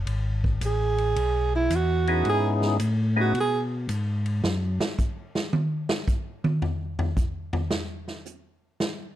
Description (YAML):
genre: soul jazz organ trio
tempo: 110 BPM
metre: 4/4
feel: swing 67% on 8ths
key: C# minor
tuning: A4 = 440 Hz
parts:
  - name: mellow tonewheel organ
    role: bass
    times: 0.0-4.8 s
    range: G#1 to B2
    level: -25 LUFS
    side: left 1 dB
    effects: slow rotary speaker
  - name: vintage drum kit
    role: drums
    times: 0.1-9.0 s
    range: hi-hat, kick drum, ride cymbal, snare drum, toms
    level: -28 LUFS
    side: equal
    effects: none
  - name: clear alto saxophone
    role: melody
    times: 0.7-3.6 s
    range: E4 to G#4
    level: -25 LUFS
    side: right 5 dB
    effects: none
  - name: percussive tonewheel organ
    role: melody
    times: 2.1-3.3 s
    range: B3 to G#4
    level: -26 LUFS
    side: left 3 dB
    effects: slow rotary speaker, overdrive
room: light reverb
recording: dark, warm production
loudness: -23 LUFS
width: side -12 dB against mid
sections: 0.0-9.2 A section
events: alto saxophone solo 0.0-9.2; drum solo 4.4-9.2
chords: 0.0 C#m7; 4.4 N.C.